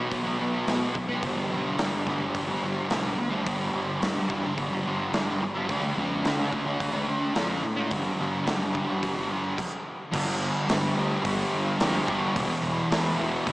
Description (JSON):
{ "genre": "rock, shoegaze and dream pop", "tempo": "108 BPM", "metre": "4/4", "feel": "straight", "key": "G major", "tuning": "A4 = 439 Hz", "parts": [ { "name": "fuzz guitar", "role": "riff", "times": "0.0-13.5 s", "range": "E2 to D4", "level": "-26 LUFS", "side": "equal", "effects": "distortion, analog chorus" }, { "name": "growling fingered electric bass", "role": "bass", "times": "0.0-13.5 s", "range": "E1 to D3", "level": "-34 LUFS", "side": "equal", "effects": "overdrive" }, { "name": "big rock drum kit", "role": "drums", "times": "0.1-13.5 s", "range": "crash cymbal, hi-hat, kick drum, snare drum", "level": "-32 LUFS", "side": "equal", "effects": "none" } ], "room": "wet huge ambient reverb, RT60 4.2 s", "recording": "dreamy mix soaked in reverb, small speaker sound", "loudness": "-25 LUFS", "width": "side -20 dB against mid", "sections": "0.0-10.1 A section; 10.1-13.5 B section", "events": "stop 9.6-10.1", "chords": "0.0 B5; 1.2 G; 5.7 Dm; 7.9 G5; 12.4 E5", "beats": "0.11 0.67 | 1.23 1.78 2.34 2.90 | 3.46 4.01 4.57 5.13 | 5.69 6.24 6.80 7.36 | 7.92 8.47 9.03 9.58 | 10.14 10.69 11.25 11.80 | 12.35 12.90 13.45" }